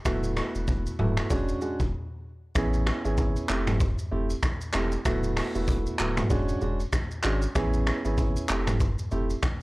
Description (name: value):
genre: afrobeats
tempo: 96 BPM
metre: 4/4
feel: swing 58% on 16ths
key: A major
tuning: A4 = 440 Hz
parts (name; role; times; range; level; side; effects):
- warm grand piano; accompaniment; 0.1-9.3 s; G#3 to G#4; -30 LUFS; right 2 dB; none
- saturated sub bass; bass; 0.1-9.3 s; D1 to A1; -29 LUFS; equal; none
- raw garage drum kit; drums; 0.1-9.6 s; finger snaps, handclaps, hi-hat, kick drum, rim click, shaker, toms; -28 LUFS; equal; none
room: small room ambience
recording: none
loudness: -24 LUFS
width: side -21 dB against mid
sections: 0.0-2.6 A section; 2.6-9.6 B section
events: break 1.9-2.6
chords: 0.1 D6; 1.3 E13; 2.6 Amaj7; 3.5 Fmaj7; 5.1 D6; 6.3 E13; 7.6 Amaj7; 8.5 Fmaj7